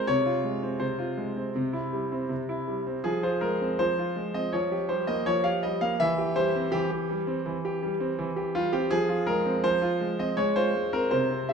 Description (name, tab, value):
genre	classical-period piano sonatina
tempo	82 BPM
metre	4/4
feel	straight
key	F minor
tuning	A4 = 441 Hz
part	clear concert grand piano	solo	0.0-11.5 s	C3 to F5	-25 LUFS	equal	none
room	wet recital hall reverb, RT60 1.4 s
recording	minimal, uncompressed stereo recording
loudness	-25 LUFS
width	side -6 dB against mid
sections	0.0-11.5 A section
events	none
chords	0.1 Fm/C; 1.6 C; 3.1 Fm; 4.5 Eb13/F; 6.0 C/E; 8.9 Fm; 10.4 Fm/Ab